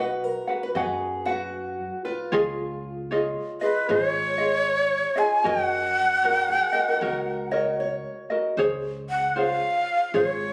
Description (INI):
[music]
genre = Hawaiian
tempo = 77 BPM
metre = 4/4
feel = swing 64% on 8ths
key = F# major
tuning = A4 = 441 Hz
[part]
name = fingerpicked old ladder-braced acoustic guitar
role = second line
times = 0.0-8.5 s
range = E#4 to C#5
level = -34 LUFS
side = equal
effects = none
[part]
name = ukulele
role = accompaniment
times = 0.0-10.5 s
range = E#4 to F#5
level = -29 LUFS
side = equal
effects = none
[part]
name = upright bass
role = bass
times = 0.0-10.5 s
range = G#1 to F#2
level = -41 LUFS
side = equal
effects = none
[part]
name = breathy bright shakuhachi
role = melody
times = 3.6-10.5 s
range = B4 to G#5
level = -25 LUFS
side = equal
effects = none
[sound]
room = moderate recital hall reverb, RT60 1.8 s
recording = recorded on a phone in the room, club reverb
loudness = -25 LUFS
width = mono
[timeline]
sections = 0.0-8.6 A section; 8.6-10.5 B section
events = none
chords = 0.0 B; 2.3 C#add9; 5.5 F#6; 8.6 Dbmaj7